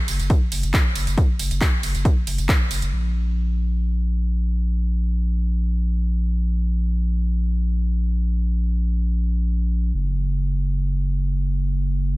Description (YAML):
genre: driving peak-time techno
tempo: free time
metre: none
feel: none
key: unclear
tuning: A4 = 440 Hz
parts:
  - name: saturated sub bass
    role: bass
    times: 0.1-12.2 s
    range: Gb1 to Bb1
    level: -21 LUFS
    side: equal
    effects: overdrive, sidechain pumping, low-pass filter
  - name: techno drum kit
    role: drums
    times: 0.1-2.9 s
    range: handclaps, hi-hat, ride cymbal, tambourine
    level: -27 LUFS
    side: right 1 dB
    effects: sidechain pumping on hats, sidechain pumping on cymbals, sidechain pumping on perc
  - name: electronic kick drum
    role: drums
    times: 0.3-2.6 s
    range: none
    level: -18 LUFS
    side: equal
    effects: none
room: light reverb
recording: none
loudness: -19 LUFS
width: side -21 dB against mid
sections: 0.0-2.9 A section; 2.9-12.2 B section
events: drop 0.0-2.9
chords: none